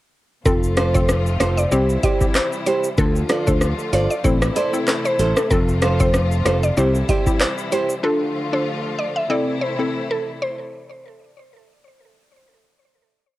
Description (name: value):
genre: dancehall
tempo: 95 BPM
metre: 4/4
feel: swing 56% on 16ths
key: A minor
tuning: A4 = 442 Hz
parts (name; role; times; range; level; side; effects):
- mallet-like synth pluck; melody; 0.5-10.5 s; A4 to E5; -24 LUFS; equal; chorus, cassette tape, tape echo
- hollow square pluck; accompaniment; 0.5-10.0 s; C4 to A4; -24 LUFS; left 2 dB; chorus, cassette tape
- clear studio string section; sustained chords; 0.5-10.5 s; C3 to F4; -28 LUFS; left 2 dB; sidechain pumping, cassette tape
- modern bright fingered electric bass; bass; 0.5-7.0 s; F1 to D2; -20 LUFS; equal; none
- booming analog drum machine; drums; 0.5-8.0 s; handclaps, hi-hat, kick drum, rim click, shaker; -21 LUFS; equal; overdrive
- nylon-string guitar; arpeggios; 0.8-7.9 s; E4 to D5; -25 LUFS; right 4 dB; cassette tape, tape echo
room: light reverb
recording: home recording on cassette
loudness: -17 LUFS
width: side -16 dB against mid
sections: 0.5-10.6 chorus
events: none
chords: 0.5 F; 1.7 C; 3.0 Dm; 4.2 Am; 5.5 F; 6.8 C; 8.0 Dm; 9.3 Am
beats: | 0.46 1.09 1.72 2.35 | 2.98 3.62 4.25 4.88 | 5.51 6.14 6.77 7.40 | 8.04 8.67 9.30 9.93